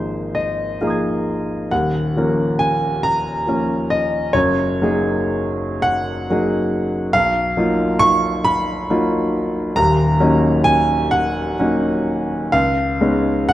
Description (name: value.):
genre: classical, impressionist solo piano.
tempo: 38-49 BPM (dotted quarters).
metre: 6/8.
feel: rubato.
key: Eb minor.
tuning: A4 = 436 Hz.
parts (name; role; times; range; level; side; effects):
clear grand piano; solo; 0.0-13.5 s; Eb1 to Ab6; -16 LUFS; equal; none.
room: moderate recital hall reverb, RT60 1.7 s.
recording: dark, warm production.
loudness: -16 LUFS.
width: side -14 dB against mid.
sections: 0.0-13.5 A section.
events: none.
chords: 0.0 Ab69; 1.7 Ebm9; 4.3 Gb69; 7.1 Bmaj7#11; 9.8 Ebm7; 12.5 Db9.